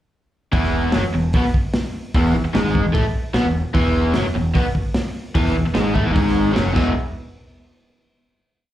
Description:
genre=garage rock duo or trio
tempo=150 BPM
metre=4/4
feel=straight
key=E major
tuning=A4 = 436 Hz
part: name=overdriven electric guitar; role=riff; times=0.5-6.9 s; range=E2 to E4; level=-20 LUFS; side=equal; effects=slapback echo
part: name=growling picked electric bass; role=bass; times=0.5-6.9 s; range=E1 to B1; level=-22 LUFS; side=equal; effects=overdrive
part: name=crunchy breakbeat drum kit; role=drums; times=0.5-6.9 s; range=crash cymbal, hi-hat, kick drum, snare drum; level=-21 LUFS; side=equal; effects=none
room=small room ambience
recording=live gig heard through the venue's PA, club reverb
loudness=-17 LUFS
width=side -13 dB against mid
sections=0.5-7.0 riff; 7.0-8.6 final hit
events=none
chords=0.5 E; 7.0 N.C.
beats=| 0.53 0.94 1.34 1.75 | 2.15 2.55 2.95 3.35 | 3.75 4.16 4.56 4.96 | 5.36 5.76 6.16 6.56

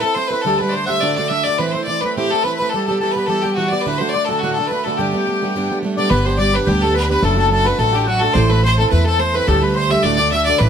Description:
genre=celtic folk, Celtic reel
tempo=213 BPM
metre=4/4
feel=swing 53% on 8ths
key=G major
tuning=A4 = 441 Hz
part: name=bright fiddle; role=melody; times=0.0-10.7 s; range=F#4 to E5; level=-19 LUFS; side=left 1 dB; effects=none
part: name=accordion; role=second line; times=0.0-10.7 s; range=F#4 to F#5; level=-21 LUFS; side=left 3 dB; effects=tape echo
part: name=picked plugged-in swing-style acoustic guitar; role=accompaniment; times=0.0-10.7 s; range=D2 to A4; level=-20 LUFS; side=right 4 dB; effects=none
part: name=upright bass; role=bass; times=6.1-10.7 s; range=F#1 to E2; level=-18 LUFS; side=equal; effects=none
room=moderate studio reverb, RT60 0.6 s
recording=none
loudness=-15 LUFS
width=side -8 dB against mid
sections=0.0-6.1 A section; 6.1-10.7 A section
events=none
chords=0.4 Dsus4; 1.0 D; 1.6 Am; 2.7 Em; 3.9 D; 5.0 Gadd9; 6.1 G; 7.2 D/F#; 8.4 Am; 9.5 Dsus4; 10.0 D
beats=0.16 | 0.45 0.73 1.02 1.30 | 1.58 1.87 2.15 2.44 | 2.72 3.00 3.29 3.57 | 3.85 4.14 4.42 4.70 | 4.98 5.27 5.55 5.83 | 6.11 6.39 6.67 6.95 | 7.23 7.51 7.79 8.08 | 8.36 8.64 8.92 9.20 | 9.48 9.76 10.04 10.32 | 10.60

